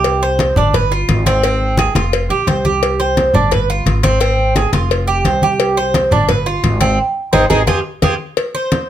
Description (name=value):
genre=latin, Cuban son and guajira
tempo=173 BPM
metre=4/4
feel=straight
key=unclear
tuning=A4 = 440 Hz
part: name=Cuban tres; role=arpeggios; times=0.0-8.9 s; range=C4 to C5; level=-16 LUFS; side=right 2 dB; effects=none
part: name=upright bass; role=bass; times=0.0-8.2 s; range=F1 to F2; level=-18 LUFS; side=equal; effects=none
part: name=cowbell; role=percussion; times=0.0-8.9 s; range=none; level=-20 LUFS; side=left 5 dB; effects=none
part: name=congas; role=percussion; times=0.1-8.9 s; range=none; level=-18 LUFS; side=left 1 dB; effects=none
room=moderate studio reverb, RT60 0.7 s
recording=none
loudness=-12 LUFS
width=side -11 dB against mid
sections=0.0-8.4 A section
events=band accent 7.0-8.4; drum fill 7.5-8.4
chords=0.0 C5; 0.7 G7; 1.4 Ab; 2.1 Fsus2; 2.8 C5; 3.5 G7; 4.2 Ab; 4.9 Fsus2; 5.6 C5; 6.3 G7; 7.0 Ab; 7.7 Fmadd9; 8.4 C5